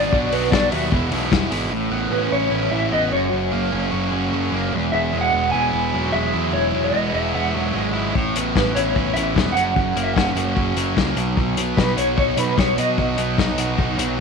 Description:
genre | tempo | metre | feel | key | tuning
indie rock | 149 BPM | 4/4 | straight | E major | A4 = 440 Hz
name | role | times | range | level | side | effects
mellow electric guitar | melody | 0.0-14.1 s | B4 to G#5 | -22 LUFS | equal | tremolo, slapback echo
fuzz guitar | riff | 0.0-14.2 s | E2 to G#4 | -22 LUFS | right 1 dB | distortion
growling picked electric bass | bass | 0.0-14.2 s | E1 to B2 | -26 LUFS | right 1 dB | overdrive
vintage drum kit | drums | 0.1-1.6, 8.2-14.1 s | hi-hat, kick drum, snare drum | -22 LUFS | left 4 dB | none
room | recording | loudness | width
light reverb | 1960s-style stereo | -18 LUFS | side -5 dB against mid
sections
0.0-1.7 A section; 1.7-14.2 B section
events
none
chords
0.1 Bm; 0.9 E; 1.7 Aadd9; 3.1 F#; 4.7 Eadd9; 8.1 Aadd9; 9.6 F#; 11.2 B

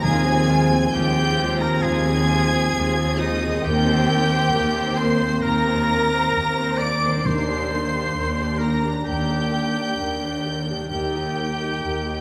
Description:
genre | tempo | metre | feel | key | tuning
cinematic, emotional film score for orchestra | 66 BPM | 4/4 | rubato | unclear | A4 = 438 Hz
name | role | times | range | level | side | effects
clear studio violin section | melody | 0.0-12.2 s | Eb6 to D7 | -31 LUFS | equal | none
clear oboe | second line | 0.0-12.2 s | Eb4 to D5 | -30 LUFS | equal | none
rich studio violin section | second line | 0.0-12.2 s | Eb5 to D6 | -33 LUFS | equal | none
small flute group | second line | 0.0-12.2 s | Eb5 to D6 | -32 LUFS | equal | none
rich studio viola section | accompaniment | 0.0-12.2 s | Ab3 to C5 | -31 LUFS | equal | none
concert harp | arpeggios | 0.0-12.2 s | Eb3 to Bb4 | -32 LUFS | equal | none
bright studio double bass section | bass | 0.0-12.2 s | Eb2 | -30 LUFS | equal | none
timpani | percussion | 0.0-1.3, 7.3-12.2 s | Eb3 | -32 LUFS | equal | none
mellow French horn section | sustained chords | 0.1-12.2 s | F3 to Eb4 | -29 LUFS | equal | none
clear studio cello section | bass | 0.1-12.2 s | Eb2 | -29 LUFS | equal | none
room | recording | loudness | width
wet scoring stage reverb, RT60 1.8 s | none | -21 LUFS | mono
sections
0.0-12.2 A section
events
none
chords
0.0 Fm/Eb; 3.6 Cm7/Eb; 7.2 Gm/Eb; 10.9 Eb

